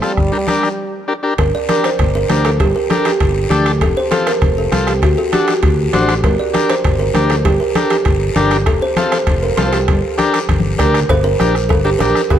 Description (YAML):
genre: latin, cumbia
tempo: 198 BPM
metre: 4/4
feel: straight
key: G minor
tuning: A4 = 440 Hz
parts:
  - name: clear trombone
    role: second line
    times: 0.0-1.0 s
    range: G3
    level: -22 LUFS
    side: right 2 dB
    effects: none
  - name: combo organ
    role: accompaniment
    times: 0.0-12.2 s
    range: C4 to C5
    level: -19 LUFS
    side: left 3 dB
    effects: none
  - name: bombo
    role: percussion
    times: 0.0-12.4 s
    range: none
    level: -19 LUFS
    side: equal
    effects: none
  - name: guiro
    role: percussion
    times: 0.0-12.4 s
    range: none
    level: -30 LUFS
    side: left 6 dB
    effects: none
  - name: fingered electric bass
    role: bass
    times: 0.2-12.4 s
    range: F1 to D2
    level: -18 LUFS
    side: equal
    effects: none
  - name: congas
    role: percussion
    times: 0.2-12.4 s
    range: none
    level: -24 LUFS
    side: left 3 dB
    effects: none
  - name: kalimba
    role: melody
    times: 1.4-12.4 s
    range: F#4 to D5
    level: -17 LUFS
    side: right 2 dB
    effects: none
  - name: timbales and cowbell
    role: percussion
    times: 1.4-12.4 s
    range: none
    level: -27 LUFS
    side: right 4 dB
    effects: none
room: light reverb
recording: none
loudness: -12 LUFS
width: side -10 dB against mid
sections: 0.0-1.4 A section; 1.4-11.1 B section; 11.1-12.4 C section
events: trombone solo 0.0-1.4; break 0.8-1.4; drum fill 10.5-11.1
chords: 0.2 Gm; 3.8 F; 5.0 D7; 6.2 Gm; 8.7 F; 9.9 Gm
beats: | 0.17 0.47 0.78 1.08 | 1.38 1.69 1.99 2.29 | 2.60 2.90 3.20 3.51 | 3.81 4.11 4.42 4.72 | 5.02 5.33 5.63 5.93 | 6.24 6.54 6.84 7.15 | 7.45 7.75 8.06 8.36 | 8.66 8.97 9.27 9.57 | 9.88 10.18 10.48 10.79 | 11.09 11.39 11.70 12.00 | 12.30